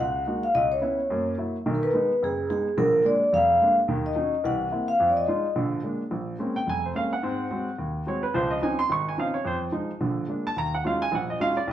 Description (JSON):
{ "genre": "jazz", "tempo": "216 BPM", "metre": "4/4", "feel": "swing 59% on 8ths", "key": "Bb minor from 6.1 s", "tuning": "A4 = 436 Hz", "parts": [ { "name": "vibraphone with medium mallets", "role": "melody", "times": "0.0-5.5 s", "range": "G#4 to Gb5", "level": "-22 LUFS", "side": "left 1 dB", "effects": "none" }, { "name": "warm baby grand piano", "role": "accompaniment", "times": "0.0-11.7 s", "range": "F1 to Db6", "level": "-26 LUFS", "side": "right 1 dB", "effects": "none" } ], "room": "wet large studio reverb, RT60 0.8 s", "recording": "band playing live in one room", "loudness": "-23 LUFS", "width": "side -11 dB against mid", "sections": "0.0-6.1 A section; 6.1-11.7 B section", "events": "none", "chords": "0.0 Gb69; 0.5 Dbm7; 1.1 Gb7; 1.7 B6; 2.8 Bb7; 3.9 Ebm7; 4.4 C7; 5.0 Fm7; 5.6 Bb7; 6.1 Bbm9; 7.2 Ab7; 8.3 Dbmaj9; 9.4 Fm7; 10.0 Bb7; 10.6 Ebm11" }